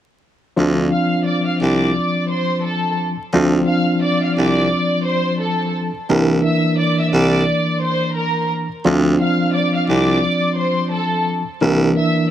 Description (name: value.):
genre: hip hop.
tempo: 87 BPM.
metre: 4/4.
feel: swing 61% on 16ths.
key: D minor.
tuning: A4 = 439 Hz.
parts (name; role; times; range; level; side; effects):
tine electric piano; accompaniment; 0.6-12.3 s; E3 to Bb4; -18 LUFS; equal; overdrive, fast stereo tremolo, high-pass filter, low-pass filter.
clear baritone saxophone; bass; 0.6-11.9 s; C2 to D2; -17 LUFS; right 1 dB; none.
warm studio violin section; melody; 0.9-12.3 s; A4 to F6; -21 LUFS; equal; high-pass filter, low-pass filter, digital delay.
room: light reverb, small room ambience.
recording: vinyl crackle.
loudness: -15 LUFS.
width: side -11 dB against mid.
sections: 0.6-3.3 A section; 3.3-12.3 B section.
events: none.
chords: 0.6 Dm7; 6.1 C9; 8.9 Dm7; 11.6 C9.